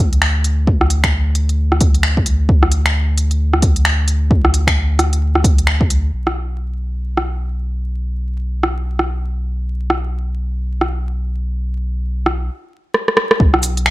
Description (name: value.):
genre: future garage.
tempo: 132 BPM.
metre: 4/4.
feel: swing 60% on 16ths.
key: B minor.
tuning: A4 = 440 Hz.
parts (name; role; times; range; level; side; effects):
soft dub sub bass; bass; 0.0-13.9 s; B1 to D2; -17 LUFS; equal; sidechain pumping.
organic electronic drum kit; drums; 0.1-13.9 s; cabasa, finger snaps, hi-hat, rim click; -17 LUFS; equal; studio reverb.
electronic kick drum; drums; 0.7-5.9, 13.4-13.5 s; none; -15 LUFS; equal; overdrive, studio reverb.
room: digital ambience.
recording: vinyl crackle.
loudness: -14 LUFS.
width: side -18 dB against mid.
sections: 0.0-6.1 A section; 6.1-13.4 B section.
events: drum fill 12.9-13.4.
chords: none.